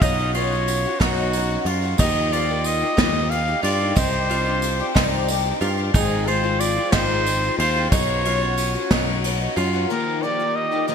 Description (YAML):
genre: indie folk with a building arrangement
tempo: 61 BPM (dotted quarters)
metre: 6/8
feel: straight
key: unclear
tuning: A4 = 440 Hz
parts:
  - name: warm trumpet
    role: melody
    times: 0.0-10.9 s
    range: F#4 to F5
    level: -24 LUFS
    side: equal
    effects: ping-pong delay
  - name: picked twelve-string acoustic guitar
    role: accompaniment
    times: 0.0-10.9 s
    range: Ab2 to G4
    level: -27 LUFS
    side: left 7 dB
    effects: analog chorus
  - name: mandolin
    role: arpeggios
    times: 0.0-9.9 s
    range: Eb4 to F4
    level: -27 LUFS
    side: right 5 dB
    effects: ping-pong delay
  - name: picked electric bass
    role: bass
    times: 0.0-9.8 s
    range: Ab1 to G2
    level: -24 LUFS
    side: equal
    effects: none
  - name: soft brush drum kit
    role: drums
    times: 0.0-9.7 s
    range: kick drum, ride cymbal, snare drum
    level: -24 LUFS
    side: equal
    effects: gated reverb
  - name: tambourine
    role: percussion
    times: 0.0-9.7 s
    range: none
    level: -36 LUFS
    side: right 12 dB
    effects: none
  - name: dark chamber string section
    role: sustained chords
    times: 9.9-10.9 s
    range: Eb3 to G4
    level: -32 LUFS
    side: right 4 dB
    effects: none
room: moderate lush hall reverb, RT60 2.6 s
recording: bright 1980s-style digital production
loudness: -18 LUFS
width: side -7 dB against mid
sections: 0.0-9.9 A section; 9.9-10.9 A section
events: none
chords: 0.0 Bsus2; 2.0 Ebadd9; 4.0 Cmadd9; 5.9 Ab6; 7.9 Bsus2; 9.9 Ebadd9